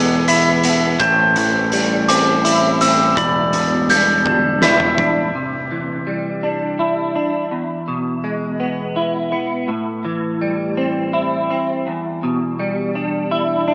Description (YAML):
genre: post-rock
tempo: 55 BPM (dotted quarters)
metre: 6/8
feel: straight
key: E minor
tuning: A4 = 445 Hz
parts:
  - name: pedal steel guitar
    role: sustained chords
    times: 0.0-5.3 s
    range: E4 to B5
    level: -28 LUFS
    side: equal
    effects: none
  - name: clean electric guitar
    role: arpeggios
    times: 0.0-13.7 s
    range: E2 to E4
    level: -21 LUFS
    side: equal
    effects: ensemble chorus, tape echo
  - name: glockenspiel with soft plastic mallets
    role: arpeggios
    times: 0.0-5.3 s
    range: D6 to B6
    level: -20 LUFS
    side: equal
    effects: tape echo
  - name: growling fingered electric bass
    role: bass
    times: 0.0-5.3 s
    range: E1 to E2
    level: -24 LUFS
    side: equal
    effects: overdrive
  - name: oversized low-tuned drum kit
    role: drums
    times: 0.3-5.2 s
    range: hi-hat, kick drum, snare drum, toms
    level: -24 LUFS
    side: equal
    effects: none
room: moderate concert hall reverb, RT60 2.1 s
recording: small speaker sound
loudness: -18 LUFS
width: mono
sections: 0.0-5.3 A section; 5.3-13.7 A section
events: drum fill 4.3-5.3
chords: 0.0 E; 1.0 Am7; 3.2 Em7; 5.3 Cadd9; 7.5 E; 9.7 Am7; 11.9 Em7